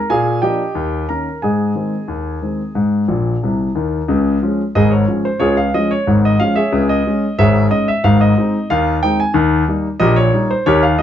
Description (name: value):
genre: ragtime piano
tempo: 91 BPM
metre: 2/4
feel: straight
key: Ab major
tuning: A4 = 440 Hz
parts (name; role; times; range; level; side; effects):
- warm grand piano; solo; 0.0-11.0 s; Ab1 to Bb5; -13 LUFS; left 1 dB; none
room: moderate small room reverb, RT60 0.6 s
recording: dark, warm production, nothing above 7.9 kHz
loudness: -13 LUFS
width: side -10 dB against mid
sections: 0.0-4.1 A section; 4.1-11.0 B section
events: grand piano fill 3.1-4.1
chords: 0.1 Bb7; 0.8 Eb7; 1.4 Ab; 4.1 Db; 6.7 Db5; 8.0 Ab; 9.3 Eb